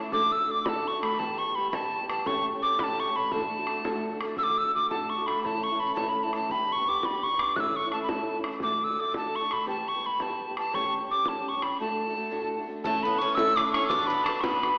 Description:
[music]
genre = celtic folk, Celtic jig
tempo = 113 BPM (dotted quarters)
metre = 6/8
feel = straight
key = D major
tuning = A4 = 440 Hz
[part]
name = fingerpicked steel-string acoustic guitar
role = accompaniment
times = 0.0-14.8 s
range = D2 to B4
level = -33 LUFS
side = equal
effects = none
[part]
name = hollow mid whistle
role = melody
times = 0.1-14.8 s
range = A5 to F#6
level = -26 LUFS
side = equal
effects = none
[part]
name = bodhran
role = percussion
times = 0.1-14.7 s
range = none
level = -35 LUFS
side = equal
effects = none
[part]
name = Irish bouzouki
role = second line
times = 12.9-14.8 s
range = A3 to E4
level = -33 LUFS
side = equal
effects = none
[sound]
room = wet scoring stage reverb, RT60 1.7 s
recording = recorded in a church or concert hall, AM radio sound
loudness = -25 LUFS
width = side -36 dB against mid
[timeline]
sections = 0.0-4.4 A section; 4.4-12.9 A section; 12.9-14.8 B section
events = break 11.8-12.9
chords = 0.1 D; 1.2 Em; 2.3 A7; 3.3 D; 5.4 A; 6.5 G; 7.6 A; 8.6 D; 9.7 Em; 10.7 A7; 11.8 D; 12.9 A; 13.9 Bm

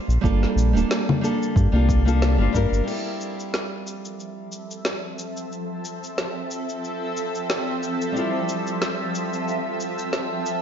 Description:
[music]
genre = sunset chillout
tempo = 91 BPM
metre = 4/4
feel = swing 55% on 16ths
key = F major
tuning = A4 = 440 Hz
[part]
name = round analog bass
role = bass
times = 0.1-2.8 s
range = D1 to G2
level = -19 LUFS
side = equal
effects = tube saturation
[part]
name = deep house drum kit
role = drums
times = 0.1-10.6 s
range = congas, crash cymbal, shaker, snare drum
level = -28 LUFS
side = left 1 dB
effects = none
[part]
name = nylon-string guitar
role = accompaniment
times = 0.2-10.6 s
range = G3 to C5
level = -26 LUFS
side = moving between left 3 dB and right 5 dB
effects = auto-pan, tape echo
[part]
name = electronic kick drum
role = drums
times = 0.2-2.7 s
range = none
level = -22 LUFS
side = equal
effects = none
[part]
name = shimmering ambient pad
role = sustained chords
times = 4.2-10.6 s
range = F3 to E5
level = -27 LUFS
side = right 1 dB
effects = chorus, built-in reverb, phaser
[sound]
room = moderate recital hall reverb, RT60 1.5 s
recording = dark, warm production, nothing above 7.5 kHz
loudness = -21 LUFS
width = side -8 dB against mid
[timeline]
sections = 0.0-2.9 A section; 2.9-10.6 B section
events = filter sweep on ambient pad 2.9-10.6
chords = 0.0 Gm9; 2.9 Fmaj7

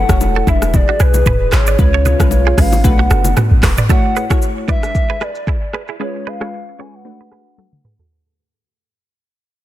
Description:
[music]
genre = afrobeats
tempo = 114 BPM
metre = 4/4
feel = swing 55% on 16ths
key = unclear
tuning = A4 = 441 Hz
[part]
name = hollow clarinet-like synth lead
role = melody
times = 0.0-7.8 s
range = B4 to G#5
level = -21 LUFS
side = right 1 dB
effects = chorus
[part]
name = glassy wavetable pluck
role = accompaniment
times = 0.0-8.0 s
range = G#3 to C#5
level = -23 LUFS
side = left 2 dB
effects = chorus
[part]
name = warm brass ensemble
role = sustained chords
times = 0.0-3.9 s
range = C#3 to A4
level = -26 LUFS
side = left 5 dB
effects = stereo widening
[part]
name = direct-recorded clean electric guitar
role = riff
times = 0.0-8.1 s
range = D4 to D5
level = -24 LUFS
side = right 9 dB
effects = digital delay
[part]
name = clean 808-style bass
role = bass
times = 0.0-3.8 s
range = E1 to C#2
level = -14 LUFS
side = equal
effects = none
[part]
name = afro-pop drum kit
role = drums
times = 0.1-8.1 s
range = handclaps, hi-hat, kick drum, rim click, shaker, toms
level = -15 LUFS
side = equal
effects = none
[part]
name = bongos and congas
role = percussion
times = 0.2-3.8 s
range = none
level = -24 LUFS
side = left 4 dB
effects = none
[sound]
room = little or no reverb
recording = dense, heavily limited modern master, low-pass filter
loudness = -12 LUFS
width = side -14 dB against mid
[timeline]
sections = 0.0-3.9 A section; 3.9-8.1 B section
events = fade-out 3.9-8.1; filter sweep 3.9-8.1; drum fill 7.6-8.1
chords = 0.5 E7; 1.8 C#7; 2.8 Bm7; 3.9 F#m7; 4.7 E7; 6.0 C#7; 7.1 Bm7

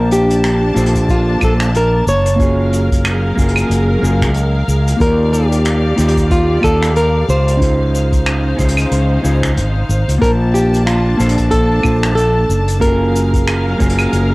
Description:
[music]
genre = sunset chillout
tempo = 92 BPM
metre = 4/4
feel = swing 58% on 16ths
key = unclear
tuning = A4 = 440 Hz
[part]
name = flamenco guitar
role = melody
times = 0.0-14.3 s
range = F4 to Db5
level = -18 LUFS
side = equal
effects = cassette tape, analog delay
[part]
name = mellow electric guitar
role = accompaniment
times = 0.0-14.3 s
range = Bb3 to A5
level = -19 LUFS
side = equal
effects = auto-pan
[part]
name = warm studio string section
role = sustained chords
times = 0.0-14.3 s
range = Db3 to A5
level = -22 LUFS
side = equal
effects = none
[part]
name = fretless electric bass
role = bass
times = 0.0-14.3 s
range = Gb1 to Eb2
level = -15 LUFS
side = equal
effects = none
[part]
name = jazz brush drum kit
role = drums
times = 0.1-14.3 s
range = claves, finger snaps, hi-hat, shaker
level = -23 LUFS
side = equal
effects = cassette tape
[part]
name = electronic kick drum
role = drums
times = 0.9-14.0 s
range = none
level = -17 LUFS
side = equal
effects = cassette tape
[sound]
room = light reverb, small room ambience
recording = home recording on cassette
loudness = -11 LUFS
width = side -22 dB against mid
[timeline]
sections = 0.0-14.3 A section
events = none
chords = 0.0 Bbmaj9; 2.4 Gbmaj9; 5.0 Ebmaj9; 7.6 Dbmaj9; 10.2 Bbmaj9; 12.8 Gbmaj9

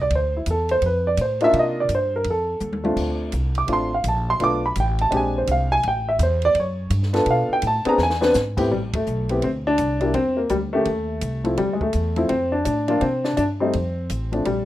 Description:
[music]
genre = jazz piano trio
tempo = 167 BPM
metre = 4/4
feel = swing 64% on 8ths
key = A minor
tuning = A4 = 439 Hz
[part]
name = warm upright piano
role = melody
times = 0.0-14.7 s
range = A2 to D6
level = -20 LUFS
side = equal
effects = none
[part]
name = upright bass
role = bass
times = 0.0-14.7 s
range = A1 to C3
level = -25 LUFS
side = equal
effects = none
[part]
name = compact cocktail drum kit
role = drums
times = 0.1-14.6 s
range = crash cymbal, hi-hat, kick drum, ride cymbal, snare drum, toms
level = -33 LUFS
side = equal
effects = none
[sound]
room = moderate studio reverb, RT60 0.6 s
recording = rough home demo mix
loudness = -19 LUFS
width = side -14 dB against mid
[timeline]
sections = 0.0-8.7 A section; 8.7-14.7 B section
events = upright piano solo 0.0-8.7; drum fill 2.6-3.0, 8.0-8.3; band accent 8.9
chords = 0.1 Dmadd9; 1.5 Cm11; 2.3 F7; 3.0 Bbmaj9; 4.4 Bm7b5; 5.1 Bb13; 5.8 A5; 6.6 F#5; 7.3 Bm7b5; 8.0 E(b13); 8.7 Amadd9; 10.1 Em7b5; 10.9 Cm6; 11.6 Dm9; 13.0 C5; 13.7 F

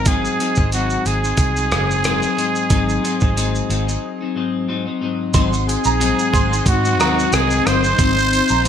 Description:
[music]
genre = indie pop, bedroom pop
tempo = 91 BPM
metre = 4/4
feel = swing 55% on 16ths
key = unclear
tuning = A4 = 440 Hz
[part]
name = growling trumpet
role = melody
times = 0.0-8.7 s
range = Gb4 to C5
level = -20 LUFS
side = right 1 dB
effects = analog chorus
[part]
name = clean electric guitar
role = accompaniment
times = 0.0-8.7 s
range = Ab2 to Eb4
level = -21 LUFS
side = left 5 dB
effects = lush chorus, warbly pitch drift
[part]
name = vintage muted fingered electric bass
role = bass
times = 0.0-8.7 s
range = Gb1 to Ab2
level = -21 LUFS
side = right 1 dB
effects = none
[part]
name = dusty soul sampler-style drum kit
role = drums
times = 0.1-8.7 s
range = hi-hat, kick drum, rim click, shaker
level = -21 LUFS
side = right 1 dB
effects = gated reverb
[part]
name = shimmering bell with halo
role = second line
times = 5.3-8.6 s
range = Bb5 to C6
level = -25 LUFS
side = right 8 dB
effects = ensemble chorus, tremolo, wide subtle chorus, ping-pong delay
[part]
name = string machine, full ensemble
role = sustained chords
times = 5.3-8.7 s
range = C4 to Ab5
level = -26 LUFS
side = equal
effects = phaser, ensemble chorus
[sound]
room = light reverb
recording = bright 1980s-style digital production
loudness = -15 LUFS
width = side -8 dB against mid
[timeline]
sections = 0.0-5.3 A section; 5.3-8.7 B section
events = break 4.0-5.3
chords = 0.0 Ab7

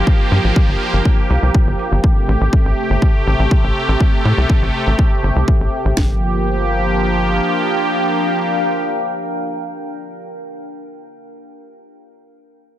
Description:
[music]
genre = melodic techno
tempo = 122 BPM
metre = 4/4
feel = straight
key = G dorian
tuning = A4 = 441 Hz
[part]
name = sweeping resonant pad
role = sustained chords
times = 0.0-10.3 s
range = C3 to G4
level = -19 LUFS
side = right 1 dB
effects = chorus, sidechain pumping
[part]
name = tight sequencer bass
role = bass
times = 0.0-7.4 s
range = G1 to A2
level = -16 LUFS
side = equal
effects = sidechain pumping
[part]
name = deep dark ambient pad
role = texture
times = 0.0-10.5 s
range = C4 to G5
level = -25 LUFS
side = left 1 dB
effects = chorus, built-in reverb, sidechain pumping
[part]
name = house drum kit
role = drums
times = 0.1-6.1 s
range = kick drum, snare drum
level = -14 LUFS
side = equal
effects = none
[part]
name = electronic hi-hat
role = drums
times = 0.3-5.8 s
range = none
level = -42 LUFS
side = right 6 dB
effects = none
[sound]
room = light reverb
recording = none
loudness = -14 LUFS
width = side -12 dB against mid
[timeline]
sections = 0.0-6.0 A section; 6.0-9.9 B section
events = none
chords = 0.0 Gm7; 2.0 Am7; 6.0 Gm7

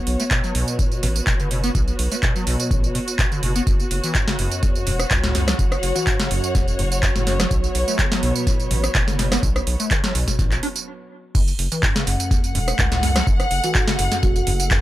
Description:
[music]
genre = acid house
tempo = 125 BPM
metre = 4/4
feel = swing 53% on 16ths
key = F# minor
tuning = A4 = 435 Hz
[part]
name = warm studio string section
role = texture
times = 0.0-14.8 s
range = B3 to F#5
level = -27 LUFS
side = equal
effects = sidechain pumping
[part]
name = round analog bass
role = bass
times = 0.1-14.8 s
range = E1 to C#2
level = -23 LUFS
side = equal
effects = sidechain pumping
[part]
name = booming analog drum machine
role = drums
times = 0.1-14.8 s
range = crash cymbal, handclaps, hi-hat, rim click, snare drum, tambourine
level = -23 LUFS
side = right 1 dB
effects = overdrive
[part]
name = acid bass, square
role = riff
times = 0.2-14.8 s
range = E2 to D4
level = -27 LUFS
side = equal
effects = overdrive, lush chorus, dub echo
[part]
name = electronic kick drum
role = drums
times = 0.3-14.8 s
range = none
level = -21 LUFS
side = equal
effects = overdrive
[part]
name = warbly tape-like pad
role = sustained chords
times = 4.6-14.8 s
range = F#3 to A4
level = -33 LUFS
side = equal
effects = chorus, built-in reverb, phaser, sidechain pumping
[part]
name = marimba with soft mallets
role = melody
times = 6.0-6.1, 13.6-14.4 s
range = F#4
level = -30 LUFS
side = right 3 dB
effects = dub echo
[sound]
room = light reverb, digital ambience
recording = none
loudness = -18 LUFS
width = side -15 dB against mid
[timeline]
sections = 0.0-11.3 A section; 11.3-14.8 B section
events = break 10.9-11.3; drop 11.3-14.8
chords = 0.0 B7(no3); 3.7 F#7(no3); 7.5 B7(no3); 11.3 F#m7

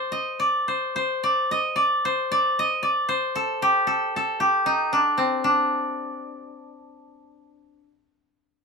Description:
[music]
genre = japanese traditional, Japanese chamber music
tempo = 54-59 BPM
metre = 2/4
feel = rubato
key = D in sen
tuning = A4 = 440 Hz
[part]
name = koto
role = solo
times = 0.0-7.9 s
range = C4 to Eb5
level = -21 LUFS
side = equal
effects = none
[sound]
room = light reverb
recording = minimal, uncompressed stereo recording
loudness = -20 LUFS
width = side -4 dB against mid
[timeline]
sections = 0.0-7.8 A section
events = none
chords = none

